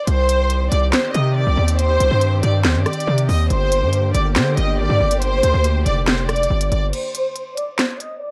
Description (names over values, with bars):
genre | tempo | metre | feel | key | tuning
hip hop, drill | 140 BPM | 4/4 | half-time | unclear | A4 = 440 Hz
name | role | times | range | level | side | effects
rich studio violin section | melody | 0.0-8.3 s | C5 to Eb5 | -23 LUFS | equal | low-pass filter, tape echo
muted studio string section | sustained chords | 0.1-6.9 s | D3 to G4 | -30 LUFS | equal | none
distorted 808-style bass | bass | 0.1-6.9 s | F1 to D3 | -20 LUFS | equal | distortion
drill drum kit | drums | 0.1-8.1 s | crash cymbal, handclaps, hi-hat, rim click, snare drum | -24 LUFS | equal | none
room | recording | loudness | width
studio reverb | dark, warm production | -18 LUFS | mono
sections
0.0-6.9 A section; 6.9-8.3 B section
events
break 6.9-8.3; filter sweep on violin section 6.9-8.3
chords
0.1 Cm; 3.5 Gm; 6.9 N.C.